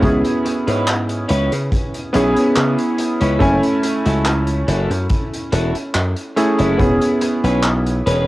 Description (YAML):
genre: vaporwave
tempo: 71 BPM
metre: 4/4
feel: straight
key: F# minor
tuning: A4 = 439 Hz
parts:
  - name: clear electric grand piano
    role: accompaniment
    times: 0.0-8.3 s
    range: A3 to G#5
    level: -18 LUFS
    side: equal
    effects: analog chorus, cassette tape, tape echo
  - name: clean electric guitar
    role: riff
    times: 0.0-8.3 s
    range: C#4 to B4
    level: -25 LUFS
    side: equal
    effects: wide subtle chorus, vintage 12-bit sampler grit, cassette tape, tape echo
  - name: dry thumbed slap bass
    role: bass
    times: 0.0-8.2 s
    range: E1 to C#3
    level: -18 LUFS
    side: equal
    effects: none
  - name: kick drum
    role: drums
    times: 0.0-7.0 s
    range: none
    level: -20 LUFS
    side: equal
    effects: cassette tape
  - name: vintage drum kit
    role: drums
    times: 0.0-8.2 s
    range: handclaps, hi-hat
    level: -26 LUFS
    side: equal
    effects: cassette tape
room: light reverb, studio reverb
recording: home recording on cassette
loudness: -15 LUFS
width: side -17 dB against mid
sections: 0.0-8.3 A section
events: none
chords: 0.0 C#m7; 3.4 F#m7; 6.8 E6